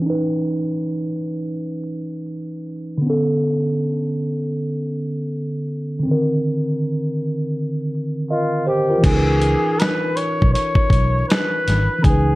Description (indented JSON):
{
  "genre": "lo-fi hip hop",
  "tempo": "80 BPM",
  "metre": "4/4",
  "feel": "swing 63% on 16ths",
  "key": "unclear",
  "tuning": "A4 = 440 Hz",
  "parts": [
    { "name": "mellow tine electric piano", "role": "accompaniment", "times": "0.0-12.4 s", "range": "D3 to Eb5", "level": "-20 LUFS", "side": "equal", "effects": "slow stereo tremolo, cassette tape" },
    { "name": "mellow flugelhorn", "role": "melody", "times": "8.3-12.4 s", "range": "E#4 to C#5", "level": "-21 LUFS", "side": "left 1 dB", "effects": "none" },
    { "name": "vintage muted fingered electric bass", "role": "bass", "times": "9.0-12.4 s", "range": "G#1 to C#2", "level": "-18 LUFS", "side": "equal", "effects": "none" },
    { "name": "dusty soul sampler-style drum kit", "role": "drums", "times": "9.0-12.3 s", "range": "crash cymbal, hi-hat, kick drum, snare drum", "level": "-18 LUFS", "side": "equal", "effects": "none" }
  ],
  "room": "moderate studio reverb, RT60 0.6 s",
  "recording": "vinyl crackle, low-pass filter",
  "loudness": "-18 LUFS",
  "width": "side -19 dB against mid",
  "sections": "0.0-9.0 A section; 9.0-12.4 B section",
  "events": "filter sweep 0.0-9.0",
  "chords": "0.0 C#m9; 3.0 Bm9; 6.0 Cm9; 9.0 C#m9"
}